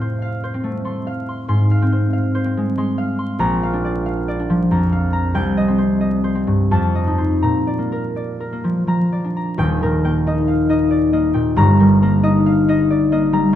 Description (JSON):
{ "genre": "classical, solo harp piece", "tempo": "82-96 BPM", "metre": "3/4", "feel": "rubato", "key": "Eb major", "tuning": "A4 = 440 Hz", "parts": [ { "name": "concert harp", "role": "solo", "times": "0.0-13.6 s", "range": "Eb1 to C6", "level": "-15 LUFS", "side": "equal", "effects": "none" } ], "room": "moderate recital hall reverb, RT60 1.4 s", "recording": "dark, warm production, vinyl crackle", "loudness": "-15 LUFS", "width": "side -11 dB against mid", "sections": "0.0-9.6 A section; 9.6-13.6 B section", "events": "none", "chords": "0.0 F/A; 1.5 Fm/Ab; 3.4 Bb; 5.3 Cm; 6.7 F7; 7.4 Bb; 9.6 Eb; 11.6 Eb/G", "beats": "0.22 0.87 | 1.50 2.15 2.79 | 3.41 4.06 4.71 | 5.34 6.00 6.70 | 7.41 8.14 8.87 | 9.58 10.26 10.91 | 11.59 12.25 12.90 | 13.54" }